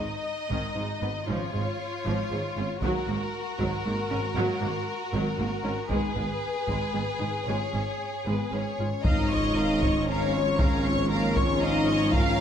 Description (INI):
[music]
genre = cinematic, epic orchestral film score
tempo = 117 BPM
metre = 3/4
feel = straight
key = unclear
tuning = A4 = 438 Hz
[part]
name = warm symphonic violin section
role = melody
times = 0.0-12.4 s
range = A#4 to E#5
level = -33 LUFS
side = left 3 dB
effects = none
[part]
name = warm symphonic violin section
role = second line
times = 0.0-12.4 s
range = D#4 to C#6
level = -33 LUFS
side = left 2 dB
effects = none
[part]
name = warm symphonic viola section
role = accompaniment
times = 0.0-12.4 s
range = D#3 to C#5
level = -34 LUFS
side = right 2 dB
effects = none
[part]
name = clear chamber double bass section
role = bass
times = 0.0-12.4 s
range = G#1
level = -33 LUFS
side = right 3 dB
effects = none
[part]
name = rich symphonic cello section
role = bass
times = 0.0-12.4 s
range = G#2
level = -33 LUFS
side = right 2 dB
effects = none
[part]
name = solo taiko drums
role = drums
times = 0.5-12.4 s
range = none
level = -29 LUFS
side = equal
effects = none
[part]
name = dark French horn section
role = sustained chords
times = 1.3-12.4 s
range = A#3 to F#4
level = -29 LUFS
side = left 3 dB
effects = none
[part]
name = warm trombone section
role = sustained chords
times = 9.0-12.4 s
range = E#3 to C#4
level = -36 LUFS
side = right 2 dB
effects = none
[part]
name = timpani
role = percussion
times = 9.0-9.8 s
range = G#2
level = -36 LUFS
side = left 1 dB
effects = none
[part]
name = sub drop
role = sound effects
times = 9.2-10.6 s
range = none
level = -36 LUFS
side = equal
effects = none
[sound]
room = moderate scoring stage reverb, RT60 1.4 s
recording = none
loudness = -25 LUFS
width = side -8 dB against mid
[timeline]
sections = 0.0-9.1 A section; 9.1-12.4 B section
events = build-up 0.0-9.1; impact 9.1-10.6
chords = 0.0 G#5; 1.3 C#/G#; 2.8 F#/G#; 5.9 G#m; 7.5 C#/G#; 9.1 A#m/G#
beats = 0.25 0.77 | 1.29 1.80 2.31 | 2.82 3.33 3.85 | 4.36 4.87 5.38 | 5.90 6.42 6.94 | 7.47 8.00 8.53 | 9.05 9.57 10.09 | 10.60 11.11 11.62 | 12.13